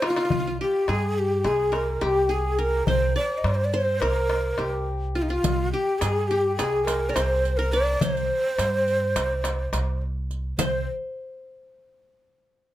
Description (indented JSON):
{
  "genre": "Turkish makam ensemble",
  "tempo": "210 BPM (eighths)",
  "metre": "9/8",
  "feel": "straight",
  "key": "C makam ussak",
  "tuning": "A4 = 440 Hz",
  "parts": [
    { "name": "breathy mellow ney", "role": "melody", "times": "0.0-10.9 s", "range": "Eb4 to Eb5", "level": "-25 LUFS", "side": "equal", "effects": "none" },
    { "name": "qanun", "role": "second line", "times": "0.0-10.9 s", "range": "F4 to D5-30c", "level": "-29 LUFS", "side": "left 1 dB", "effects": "none" },
    { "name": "darbuka", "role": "percussion", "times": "0.0-10.9 s", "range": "none", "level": "-30 LUFS", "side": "left 2 dB", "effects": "none" },
    { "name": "upright bass", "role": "bass", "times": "0.3-10.8 s", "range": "C2 to G2", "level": "-27 LUFS", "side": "right 1 dB", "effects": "none" },
    { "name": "riq", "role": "percussion", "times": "5.4-10.9 s", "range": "none", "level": "-32 LUFS", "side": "right 5 dB", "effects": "none" }
  ],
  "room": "moderate small room reverb, RT60 0.5 s",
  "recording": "none",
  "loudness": "-22 LUFS",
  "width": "side -13 dB against mid",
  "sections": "0.3-10.6 A section; 10.6-12.7 B section",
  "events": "drum fill 0.0-0.3",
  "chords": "none"
}